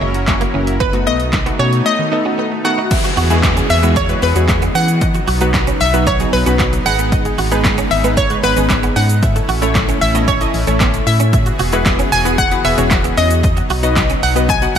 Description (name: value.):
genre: dance-pop.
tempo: 114 BPM.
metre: 4/4.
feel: straight.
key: E major.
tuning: A4 = 442 Hz.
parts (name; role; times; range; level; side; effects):
hollow square pluck; melody; 0.0-14.8 s; B4 to G#5; -18 LUFS; left 1 dB; chorus, ping-pong delay, slapback echo.
funky polysynth comp; accompaniment; 0.0-14.8 s; F#3 to F#5; -20 LUFS; left 1 dB; chorus, slapback echo.
soft supersaw; sustained chords; 0.0-14.8 s; E3 to A#4; -23 LUFS; equal; sidechain pumping.
analog pluck; arpeggios; 0.0-14.6 s; D#3 to E5; -27 LUFS; left 1 dB; none.
direct-recorded clean electric guitar; riff; 0.0-14.7 s; G#3 to F#4; -25 LUFS; right 7 dB; ensemble chorus, slapback echo.
organ-like FM bass; bass; 0.0-14.8 s; E1 to E3; -18 LUFS; equal; sidechain pumping.
punchy analog drum machine; drums; 0.1-14.8 s; crash cymbal, handclaps, hi-hat, kick drum, shaker, snare drum; -18 LUFS; equal; overdrive.
downlifter; sound effects; 2.9-7.1 s; none; -26 LUFS; equal; none.
room: moderate lush hall reverb, RT60 1.9 s.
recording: big arena sound.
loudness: -12 LUFS.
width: side -8 dB against mid.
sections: 0.0-2.9 A section; 2.9-14.8 B section.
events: none.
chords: 0.0 F#7; 0.8 B7; 2.9 Eadd9; 5.0 B; 6.9 G#m; 9.2 A; 11.3 Eadd9; 13.4 B.